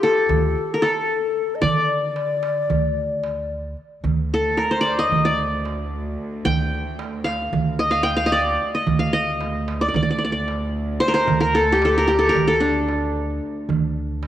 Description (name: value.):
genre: Turkish makam ensemble.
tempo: 224 BPM (eighths).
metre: 9/8.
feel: straight.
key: D makam kurdi.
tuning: A4 = 440 Hz.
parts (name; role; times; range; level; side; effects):
qanun; melody; 0.0-14.1 s; D4 to G5; -20 LUFS; equal; cassette tape.
breathy bright low ney; second line; 0.0-3.5 s; A4 to Eb5; -24 LUFS; left 6 dB; none.
darbuka; percussion; 0.0-14.3 s; none; -26 LUFS; right 6 dB; none.
upright bass; bass; 0.3-14.3 s; D2 to D3; -26 LUFS; equal; none.
clear symphonic cello section; drone; 4.0-13.7 s; D2; -32 LUFS; right 1 dB; none.
room: moderate lush hall reverb, RT60 2.3 s.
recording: home recording on cassette.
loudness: -18 LUFS.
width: side -12 dB against mid.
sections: 0.0-4.0 A section; 4.0-13.7 B section.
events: none.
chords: none.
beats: 0.02 0.29 0.56 0.82 1.09 1.36 | 1.63 1.90 2.16 2.43 2.70 2.97 3.23 3.50 3.77 | 4.04 4.31 4.58 4.84 5.11 5.38 5.65 5.92 6.18 | 6.45 6.72 6.99 7.25 7.52 7.79 8.06 8.33 8.60 | 8.86 9.13 9.40 9.67 9.94 10.20 10.47 10.74 11.01 | 11.28 11.54 11.81 12.08 12.35 12.62 12.88 13.15 13.42 | 13.69 13.96 14.22.